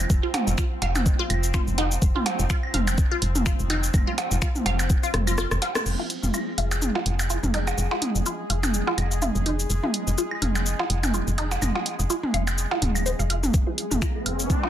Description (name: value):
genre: minimal techno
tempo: 125 BPM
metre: 4/4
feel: swing 56% on 16ths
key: F minor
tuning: A4 = 437 Hz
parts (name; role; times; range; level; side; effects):
- woody FM bass; bass; 0.0-14.6 s; Eb1 to F1; -26 LUFS; equal; sidechain pumping
- bubbling stepped-filter texture; texture; 0.0-14.7 s; F3 to Ab4; -35 LUFS; left 2 dB; chorus, built-in reverb, sidechain pumping
- electronic kick drum; drums; 0.1-5.0, 13.5-14.6 s; none; -22 LUFS; equal; overdrive
- punchy analog drum machine; drums; 0.1-14.6 s; cabasa, crash cymbal, finger snaps, hi-hat, rim click; -29 LUFS; left 1 dB; high-pass filter on hats, high-pass filter on perc, high-pass filter on snare, high-pass filter on cymbals
- resonant blip pluck; riff; 0.2-14.7 s; Eb4 to F5; -31 LUFS; equal; phaser, cassette tape, sidechain pumping, dub echo
- electronic toms, percussion blips and claves; percussion; 0.3-14.7 s; none; -28 LUFS; right 2 dB; digital delay
- riser; sound effects; 13.9-14.7 s; none; -31 LUFS; right 2 dB; none
room: light reverb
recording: dense, heavily limited modern master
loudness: -22 LUFS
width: side -11 dB against mid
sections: 0.0-5.9 A section; 5.9-13.5 B section; 13.5-14.7 C section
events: drum fill 5.1-5.9; break 5.4-5.9; band accent 5.7; build-up 13.5-14.7; riser 13.9-14.7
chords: 0.0 F5; 13.5 Ebsus4 (rootless)